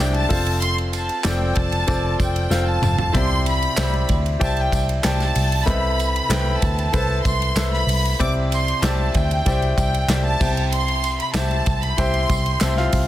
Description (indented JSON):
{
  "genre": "piano-driven pop",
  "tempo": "95 BPM",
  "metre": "4/4",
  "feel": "straight",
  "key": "C major",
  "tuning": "A4 = 440 Hz",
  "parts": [
    { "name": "warm studio violin section", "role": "melody", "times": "0.0-12.9 s", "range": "G5 to D6", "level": "-25 LUFS", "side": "equal", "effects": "none" },
    { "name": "clear baby grand piano", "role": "accompaniment", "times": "0.0-13.1 s", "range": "C3 to A5", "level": "-24 LUFS", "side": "left 2 dB", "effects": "none" },
    { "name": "vintage muted picked electric bass", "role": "bass", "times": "0.0-13.1 s", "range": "F1 to D2", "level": "-22 LUFS", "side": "equal", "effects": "none" },
    { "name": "modern studio drum kit", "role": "drums", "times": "0.1-13.1 s", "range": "crash cymbal, handclaps, hi-hat, kick drum, ride cymbal, snare drum, toms", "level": "-24 LUFS", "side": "equal", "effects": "none" },
    { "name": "tambourine", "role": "percussion", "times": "0.3-13.1 s", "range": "none", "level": "-38 LUFS", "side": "right 6 dB", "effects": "none" }
  ],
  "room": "light reverb",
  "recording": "dense, heavily limited modern master",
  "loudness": "-18 LUFS",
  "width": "side -13 dB against mid",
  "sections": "0.0-13.1 A section",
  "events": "drum fill 2.5-3.1",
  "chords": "0.3 F; 3.1 Cadd9; 5.7 Amadd9/C; 8.2 Cadd9; 10.4 C",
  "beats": "| 0.62 1.26 1.89 2.52 | 3.15 3.78 4.41 5.04 | 5.67 6.30 6.94 7.57 | 8.20 8.83 9.46 10.09 | 10.72 11.35 11.98 12.61"
}